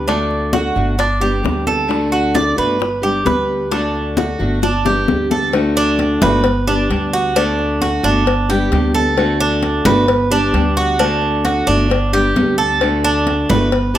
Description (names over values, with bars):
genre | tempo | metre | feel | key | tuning
latin, Cuban son and guajira | 132 BPM | 4/4 | straight | D major | A4 = 439 Hz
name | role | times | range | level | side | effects
fingerpicked steel-string acoustic guitar | accompaniment | 0.0-14.0 s | D3 to G4 | -19 LUFS | left 2 dB | none
Cuban tres | arpeggios | 0.0-14.0 s | D4 to D5 | -18 LUFS | right 3 dB | none
upright bass | bass | 0.0-14.0 s | G1 to D2 | -20 LUFS | equal | none
bongos and cowbell | percussion | 0.1-13.9 s | none | -22 LUFS | left 7 dB | none
congas | percussion | 0.1-14.0 s | none | -21 LUFS | equal | none
room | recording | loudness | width
light reverb | none | -13 LUFS | side -12 dB against mid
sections
0.0-5.5 A section; 5.5-14.0 B section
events
drum fill 4.6-5.5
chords
0.1 D; 1.0 G; 1.9 D; 2.8 G; 3.7 D; 4.6 G; 5.5 D; 6.4 G; 7.4 D; 8.3 G; 9.2 D; 10.1 G; 11.0 D; 11.9 G; 12.8 D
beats
| 0.08 0.53 0.99 1.44 | 1.90 2.35 2.81 3.26 | 3.72 4.17 4.63 5.08 | 5.54 6.00 6.45 6.90 | 7.36 7.81 8.27 8.72 | 9.18 9.63 10.09 10.54 | 10.99 11.45 11.90 12.36 | 12.81 13.27 13.72